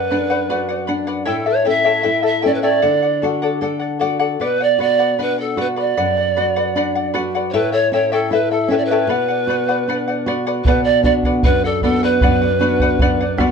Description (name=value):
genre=andean folk, Andean ensemble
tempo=77 BPM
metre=2/4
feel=straight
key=B minor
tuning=A4 = 440 Hz
part: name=breathy polished pan flute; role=melody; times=0.0-13.4 s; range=A4 to E5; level=-18 LUFS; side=right 2 dB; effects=none
part: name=charango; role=accompaniment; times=0.0-13.5 s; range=E4 to G5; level=-20 LUFS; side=left 5 dB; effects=none
part: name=nylon-string guitar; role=accompaniment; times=0.0-13.5 s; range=F#2 to A4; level=-21 LUFS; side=equal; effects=none
part: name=bombo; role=percussion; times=10.6-13.5 s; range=none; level=-18 LUFS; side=right 1 dB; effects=none
room=moderate small room ambience, RT60 0.5 s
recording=dark, warm production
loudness=-15 LUFS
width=side -6 dB against mid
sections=0.0-10.7 A section; 10.7-13.5 A section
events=none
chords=0.0 Bm; 1.3 A7; 2.8 D; 4.4 Bm; 7.5 A7; 9.1 Bm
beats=0.49 | 1.28 2.06 | 2.84 3.62 | 4.41 5.19 | 5.97 6.75 | 7.54 8.32 | 9.10 9.88 | 10.66 11.44 | 12.21 12.99